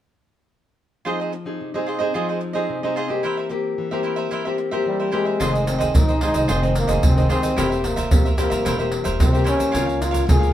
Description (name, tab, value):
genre	samba and choro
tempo	111 BPM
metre	4/4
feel	straight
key	F minor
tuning	A4 = 440 Hz
part	cavaquinho	accompaniment	1.1-10.5 s	E4 to F5	-26 LUFS	right 4 dB	none
part	nylon-string guitar	accompaniment	1.1-10.5 s	F2 to Ab4	-24 LUFS	left 3 dB	none
part	breathy trombone	melody	4.9-10.5 s	G3 to Ab4	-24 LUFS	equal	none
part	upright bass	bass	5.4-10.5 s	E1 to Db3	-24 LUFS	equal	none
part	egg shaker, surdo and pandeiro	percussion	5.4-10.5 s	none	-20 LUFS	right 1 dB	none
room	moderate studio reverb, RT60 0.8 s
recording	band playing live in one room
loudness	-18 LUFS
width	side -12 dB against mid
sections	1.1-5.4 A section; 5.4-10.5 B section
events	none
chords	1.1 Fm7; 3.2 C7/E; 5.4 Fm7; 7.6 C7/E; 9.7 Db6